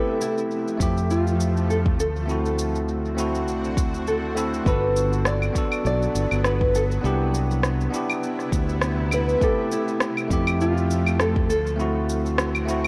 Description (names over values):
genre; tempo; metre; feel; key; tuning
sunset chillout; 101 BPM; 4/4; swing 56% on 16ths; unclear; A4 = 440 Hz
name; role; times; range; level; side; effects
nylon-string guitar; melody; 0.0-12.9 s; E4 to D5; -29 LUFS; equal; delay
bell-like tine electric piano; accompaniment; 0.0-12.9 s; A3 to E5; -29 LUFS; equal; delay
shimmering ambient pad; sustained chords; 0.0-12.9 s; C3 to F#4; -36 LUFS; equal; chorus, built-in reverb
electronic cabasa, rim click and claves; drums; 0.2-12.9 s; none; -31 LUFS; equal; none
fingered electric bass; bass; 0.8-12.9 s; G1 to F2; -27 LUFS; equal; none
electronic kick drum; drums; 0.8-11.5 s; none; -27 LUFS; equal; none
room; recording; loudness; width
moderate lush hall reverb, RT60 2.6 s; worn, warbling old tape, cassette tape, warbly pitch drift; -23 LUFS; mono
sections
0.0-12.9 A section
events
none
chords
0.0 Fmaj7; 2.0 D7; 4.7 Gmaj7; 7.0 Cmaj7; 9.4 Fmaj7; 11.5 D7